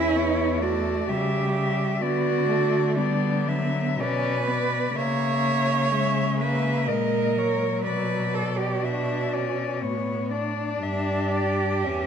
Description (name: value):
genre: classical, lyrical piece for cello ensemble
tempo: 61 BPM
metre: 3/4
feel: uneven beats, rubato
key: B minor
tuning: A4 = 439 Hz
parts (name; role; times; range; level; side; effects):
- rich cello; melody; 0.0-12.1 s; C#5 to E5; -30 LUFS; left 7 dB; none
- rich cello; second line; 0.0-12.1 s; B3 to C#5; -26 LUFS; right 5 dB; none
- warm cello; accompaniment; 0.0-12.1 s; F#3 to D4; -29 LUFS; left 4 dB; none
- rich cello; bass; 0.0-12.1 s; E2 to D3; -28 LUFS; equal; none
room: wet concert hall reverb, RT60 2.3 s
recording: none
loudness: -22 LUFS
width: side -8 dB against mid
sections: 0.0-12.1 A section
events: none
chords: 0.0 C#dim/E; 2.0 Bm/D; 5.0 A#dim/C#; 7.9 Bm; 10.8 G5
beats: 0.17 1.09 | 2.02 2.98 4.00 | 4.95 5.92 6.88 | 7.86 8.84 9.81 | 10.81 11.84